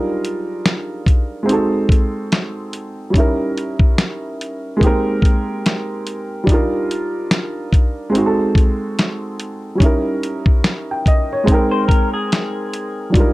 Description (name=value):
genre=lo-fi hip hop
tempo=72 BPM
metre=4/4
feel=swing 59% on 16ths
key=unclear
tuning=A4 = 439 Hz
part: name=dark upright piano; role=accompaniment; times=0.0-13.3 s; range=Gb3 to G5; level=-19 LUFS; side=right 1 dB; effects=cassette tape, plate reverb
part: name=dusty soul sampler-style drum kit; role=drums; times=0.2-13.3 s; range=hi-hat, kick drum, snare drum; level=-14 LUFS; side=equal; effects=none
part: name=electric guitar through a small old amp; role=second line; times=11.7-13.1 s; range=Ab4 to C5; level=-23 LUFS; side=left 4 dB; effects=analog delay
room=light reverb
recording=none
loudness=-15 LUFS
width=side -19 dB against mid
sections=0.0-13.3 A section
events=none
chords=0.0 Ebmaj9; 1.5 Ab7b9; 3.1 Eb7b9; 4.8 Abmaj9; 6.5 Ebmaj9; 8.1 Ab7b9; 9.8 Eb7b9; 11.5 Abmaj9